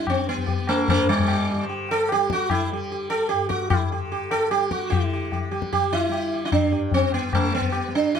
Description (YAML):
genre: indian classical, Hindustani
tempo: 149 BPM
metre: 4/4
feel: straight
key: G raga bilaval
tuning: A4 = 440 Hz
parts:
  - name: sitar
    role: melody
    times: 0.0-8.2 s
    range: G3 to A4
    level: -22 LUFS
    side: right 2 dB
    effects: none
  - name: tanpura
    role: drone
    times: 0.0-8.2 s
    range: G2 to G3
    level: -33 LUFS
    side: left 2 dB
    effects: none
  - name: tabla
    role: percussion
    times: 0.1-8.2 s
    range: none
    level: -26 LUFS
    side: left 5 dB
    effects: none
room: light reverb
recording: close, detailed microphones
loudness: -20 LUFS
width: side -7 dB against mid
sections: 0.0-4.9 A section; 4.9-8.2 B section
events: none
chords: none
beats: | 0.06 0.47 0.88 1.28 | 1.69 2.09 2.49 2.90 | 3.30 3.70 4.11 4.51 | 4.91 5.31 5.71 6.11 | 6.51 6.91 7.31 7.71 | 8.11